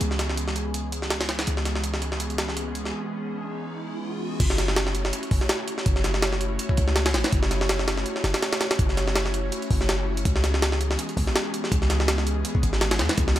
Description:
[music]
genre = drum and bass, jungle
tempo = 164 BPM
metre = 4/4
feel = swing 55% on 16ths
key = F# minor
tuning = A4 = 440 Hz
[part]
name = airy breathy pad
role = sustained chords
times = 0.0-13.4 s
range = E3 to G#4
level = -31 LUFS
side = equal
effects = chorus
[part]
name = warm 808-style bass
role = bass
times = 0.0-13.4 s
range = F#1 to E2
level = -26 LUFS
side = equal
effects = none
[part]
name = jungle sampler-style drum kit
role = drums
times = 0.0-13.4 s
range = crash cymbal, hi-hat, kick drum, snare drum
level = -24 LUFS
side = equal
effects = high-pass filter on hats, high-pass filter on snare, high-pass filter on kick, high-pass filter on cymbals, high-pass filter on room
[part]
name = riser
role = sound effects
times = 2.7-4.4 s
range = none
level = -38 LUFS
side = right 1 dB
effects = none
[sound]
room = little or no reverb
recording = none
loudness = -22 LUFS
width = side -13 dB against mid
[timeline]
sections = 0.0-4.4 A section; 4.4-13.4 B section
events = riser 2.7-4.4; break 2.9-4.4; drop 4.4-13.4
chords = 0.0 C#m7; 4.4 F#m7; 10.3 C#m7

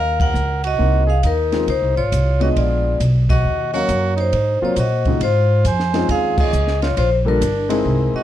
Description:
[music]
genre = jazz, small-group swing and bop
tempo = 136 BPM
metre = 4/4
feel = swing 66% on 8ths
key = Db major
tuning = A4 = 444 Hz
[part]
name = vibraphone with medium hard mallets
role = melody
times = 0.0-8.2 s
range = Bb4 to Ab5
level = -20 LUFS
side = moving between left 6 dB and right 4 dB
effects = auto-pan, plate reverb
[part]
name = bright trumpet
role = second line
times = 0.0-8.2 s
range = D4 to C5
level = -26 LUFS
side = right 7 dB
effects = none
[part]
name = upright bass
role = bass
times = 0.0-8.2 s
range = G1 to Bb2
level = -18 LUFS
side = equal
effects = none
[part]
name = compact cocktail drum kit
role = drums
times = 0.2-8.0 s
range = crash cymbal, hi-hat, kick drum, ride cymbal, snare drum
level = -26 LUFS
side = equal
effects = none
[part]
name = warm grand piano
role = accompaniment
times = 0.8-8.2 s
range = Db3 to F5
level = -22 LUFS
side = left 3 dB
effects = none
[sound]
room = light reverb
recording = dark, warm production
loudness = -15 LUFS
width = side -12 dB against mid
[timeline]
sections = 0.0-5.2 A section; 5.2-8.2 B section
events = band accent 0.1, 3.2, 6.3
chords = 0.0 Ebm7; 0.8 Ab7; 1.7 Dbmaj7; 2.6 Bb7b9; 3.4 Ebm7; 4.3 Ab13; 5.2 Dbmaj7; 7.0 Gm9

